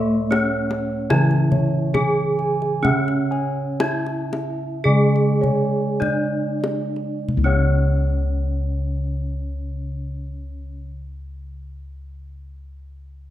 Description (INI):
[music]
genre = Javanese gamelan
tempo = 46-80 BPM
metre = 4/4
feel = straight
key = C# pelog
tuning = A4 = 440 Hz
[part]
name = gamelan-type bronze metallophone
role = melody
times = 0.0-10.9 s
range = A3 to G#4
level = -24 LUFS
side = equal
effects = none
[part]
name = gamelan-type bronze metallophone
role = accompaniment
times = 0.0-10.9 s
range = C#3 to A3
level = -27 LUFS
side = right 2 dB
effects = none
[part]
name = gamelan-type bossed gongs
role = arpeggios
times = 0.0-10.9 s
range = C#5 to G#5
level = -29 LUFS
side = left 4 dB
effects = none
[part]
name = gamelan-type bronze metallophone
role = arpeggios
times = 0.0-10.9 s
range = A4 to G#5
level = -32 LUFS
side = right 7 dB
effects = none
[part]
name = gamelan-type bossed gongs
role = bass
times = 0.0-10.8 s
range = C#2 to A4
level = -23 LUFS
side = left 1 dB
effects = none
[part]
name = kendang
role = percussion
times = 0.3-7.9 s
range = none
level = -28 LUFS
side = left 2 dB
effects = none
[sound]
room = moderate recital hall reverb, RT60 1.3 s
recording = dark, warm production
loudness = -18 LUFS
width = side -13 dB against mid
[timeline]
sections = 0.0-7.3 A section; 7.3-12.5 B section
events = slowing down 0.0-7.3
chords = none